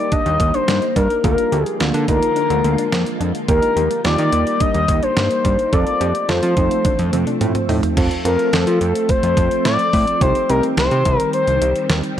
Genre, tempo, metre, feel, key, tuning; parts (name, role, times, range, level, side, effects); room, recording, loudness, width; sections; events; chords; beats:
synth-pop; 107 BPM; 4/4; straight; A4 = 442 Hz
expressive portamento lead; melody; 0.0-11.9 s; A4 to Eb5; -19 LUFS; left 3 dB; chorus
soft electric-piano-like synth keys; accompaniment; 0.0-11.1 s; Bb3 to A4; -25 LUFS; right 3 dB; chorus
soft string machine; sustained chords; 0.0-12.2 s; D3 to F4; -24 LUFS; equal; phaser, ensemble chorus
soft round pluck; arpeggios; 0.0-7.9 s; Bb3 to Bb4; -26 LUFS; right 3 dB; chorus, analog delay
detuned 8-bit digital drum machine; drums; 0.1-12.2 s; crash cymbal, hi-hat, kick drum, snare drum, toms; -21 LUFS; right 1 dB
fat analog bass; bass; 0.3-12.2 s; C2 to F3; -20 LUFS; right 1 dB
light reverb; dry, gritty hardware recording; -15 LUFS; side -10 dB against mid
0.0-8.0 A section; 8.0-12.2 B section
drum fill 6.8-8.0
0.0 Eb; 1.2 Bb7/D; 3.5 Eb; 5.7 F; 10.2 Cm
0.12 0.68 | 1.24 1.80 2.36 2.92 | 3.48 4.05 4.61 5.17 | 5.73 6.29 6.85 7.41 | 7.97 8.53 9.09 9.65 | 10.21 10.78 11.34 11.90